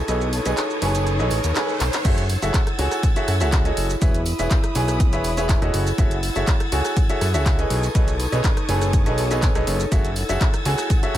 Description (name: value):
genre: piano house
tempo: 122 BPM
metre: 4/4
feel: straight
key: F# dorian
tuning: A4 = 441 Hz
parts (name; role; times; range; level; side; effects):
- dark symphonic violin section; sustained chords; 0.0-11.2 s; B4 to A6; -31 LUFS; left 1 dB; sidechain pumping
- riser; sound effects; 0.0-2.0 s; none; -31 LUFS; equal; none
- airy breathy pad; texture; 0.0-11.2 s; D#4 to B5; -30 LUFS; equal; chorus, sidechain pumping
- clear grand piano; riff; 0.1-11.2 s; E4 to G#5; -25 LUFS; equal; sidechain pumping, ping-pong delay
- fat analog bass; bass; 0.1-11.2 s; E1 to F#2; -23 LUFS; equal; sidechain pumping
- garage drum kit; drums; 0.1-11.2 s; crash cymbal, handclaps, hi-hat, rim click, shaker; -29 LUFS; equal; small room reverb
- tambourine; percussion; 0.1-11.2 s; none; -38 LUFS; right 2 dB; none
- electronic kick drum; drums; 2.0-11.0 s; none; -20 LUFS; equal; small room reverb
room: little or no reverb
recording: none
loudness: -18 LUFS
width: side -12 dB against mid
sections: 0.0-2.0 A section; 2.0-11.2 B section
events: riser 0.0-2.0; break 0.1-2.0; drum fill 1.8; drop 2.0-11.2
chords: 0.0 B13; 2.0 F#m9; 4.0 C#m7/E; 5.7 F#m9; 7.7 B13; 9.9 F#m9